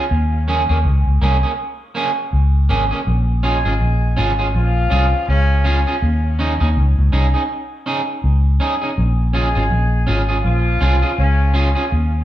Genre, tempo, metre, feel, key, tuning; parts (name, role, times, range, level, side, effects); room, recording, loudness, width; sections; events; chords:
reggae; 81 BPM; 4/4; swing 59% on 16ths; Bb minor; A4 = 440 Hz
electric guitar at the edge of break-up; accompaniment; 0.0-11.8 s; Bb3 to Ab4; -21 LUFS; right 3 dB; spring reverb
vintage muted fingered electric bass; bass; 0.1-12.2 s; Ab1 to Eb2; -15 LUFS; equal
warm horn section; second line; 3.4-11.7 s; Db3 to Ab4; -24 LUFS; left 2 dB; tape echo
moderate large studio reverb, RT60 0.9 s; band playing live in one room; -15 LUFS; side -13 dB against mid
0.0-12.2 A section
0.1 Eb7sus4; 3.1 Bbm7; 6.0 Eb7sus4; 9.0 Bbm7